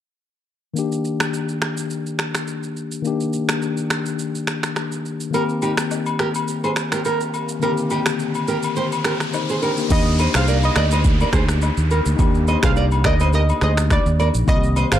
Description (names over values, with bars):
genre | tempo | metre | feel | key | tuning
afrobeats | 105 BPM | 4/4 | swing 55% on 16ths | Eb major | A4 = 441 Hz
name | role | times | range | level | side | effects
mellow tine electric piano | accompaniment | 0.7-15.0 s | D3 to C5 | -24 LUFS | left 4 dB | auto-pan
afro-pop drum kit | drums | 0.8-15.0 s | crash cymbal, finger snaps, kick drum, rim click, shaker | -23 LUFS | right 1 dB | none
nylon-string guitar | riff | 5.3-15.0 s | Eb4 to Eb5 | -25 LUFS | right 5 dB | digital delay
agogo bells and woodblock | percussion | 5.3-14.9 s | none | -28 LUFS | left 7 dB | none
riser and downlifter | sound effects | 6.4-14.5 s | none | -31 LUFS | equal | none
analog pluck | melody | 9.9-15.0 s | D5 to F5 | -25 LUFS | right 1 dB | chorus, digital delay
fingered electric bass | bass | 9.9-15.0 s | G1 to Eb2 | -18 LUFS | right 1 dB | none
room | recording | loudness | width
light reverb | dark, warm production | -18 LUFS | side -11 dB against mid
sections
0.8-9.9 A section; 9.9-15.0 B section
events
riser 6.4-9.9; kick muted 8.8-9.9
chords
0.8 Ebmaj7; 5.3 Cm7; 9.9 Ebmaj7; 14.5 Cm7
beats
| 0.76 1.33 1.91 2.48 | 3.05 3.62 4.19 4.76 | 5.33 5.91 6.48 7.05 | 7.62 8.19 8.76 9.34 | 9.91 10.48 11.05 11.62 | 12.19 12.76 13.34 13.91 | 14.48